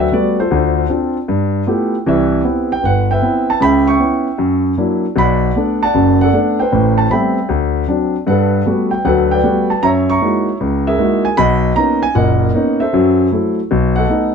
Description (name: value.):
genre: solo jazz.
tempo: 155 BPM.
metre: 4/4.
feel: swing 66% on 8ths.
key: G major.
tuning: A4 = 439 Hz.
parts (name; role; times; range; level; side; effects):
warm concert grand piano; solo; 0.0-14.3 s; F#1 to C#6; -12 LUFS; equal; none.
room: light reverb.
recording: dark, warm production.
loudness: -12 LUFS.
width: side -6 dB against mid.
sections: 0.0-11.4 A section; 11.4-14.3 B section.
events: none.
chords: 0.0 Gmaj9; 0.5 Dm7; 1.3 G13; 2.1 Cmaj7; 3.6 C#m7b5; 4.4 F#7b13; 5.2 Bm7; 6.7 Am9; 7.5 D7; 8.3 Gmaj9; 9.8 F#13; 11.4 Bmaj9; 12.9 F#m7b5; 13.7 B7.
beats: 0.12 | 0.50 0.89 1.28 1.67 | 2.06 2.44 2.83 3.22 | 3.61 4.00 4.38 4.77 | 5.16 5.55 5.94 6.32 | 6.71 7.10 7.49 7.88 | 8.26 8.65 9.04 9.43 | 9.81 10.20 10.59 10.98 | 11.37 11.76 12.14 12.53 | 12.92 13.31 13.70 14.08.